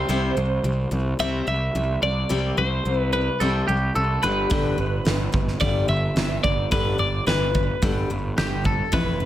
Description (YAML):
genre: quiet-loud alternative rock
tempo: 109 BPM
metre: 4/4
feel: straight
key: G mixolydian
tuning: A4 = 440 Hz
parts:
  - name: twelve-string electric guitar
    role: melody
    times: 0.0-9.3 s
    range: G4 to E5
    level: -25 LUFS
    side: equal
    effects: phaser, slapback echo
  - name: picked steel-string acoustic guitar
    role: arpeggios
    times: 0.0-9.3 s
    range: F2 to C4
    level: -28 LUFS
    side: left 2 dB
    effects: slapback echo
  - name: fuzz picked electric bass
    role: bass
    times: 0.0-9.3 s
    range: F1 to C2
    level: -24 LUFS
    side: equal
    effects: overdrive
  - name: huge arena drum kit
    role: drums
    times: 4.5-9.1 s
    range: hi-hat, kick drum, snare drum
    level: -25 LUFS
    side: right 1 dB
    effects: none
room: light reverb, studio reverb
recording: none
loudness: -20 LUFS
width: side -12 dB against mid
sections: 0.0-9.3 A section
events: none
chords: 0.0 C5; 4.2 G